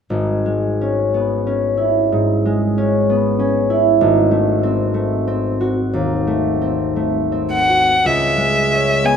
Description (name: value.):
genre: classical, romantic duo for violin and harp.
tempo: 54-64 BPM.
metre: 4/4.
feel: rubato.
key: C# minor.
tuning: A4 = 440 Hz.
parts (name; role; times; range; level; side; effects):
concert harp; accompaniment; 0.1-9.2 s; G#1 to F#4; -15 LUFS; equal; none.
rich violin; melody; 7.5-9.2 s; E5 to G#5; -14 LUFS; left 1 dB; none.
room: moderate recital hall reverb, RT60 1.8 s.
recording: close, detailed microphones.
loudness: -14 LUFS.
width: side -7 dB against mid.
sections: 0.1-8.1 A section; 8.1-9.2 B section.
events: none.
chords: 0.1 C#m/G#; 4.0 G#7b9; 8.1 C#m.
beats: | 0.12 1.14 2.14 3.10 | 4.04 4.98 5.95 6.97 | 8.05 9.05.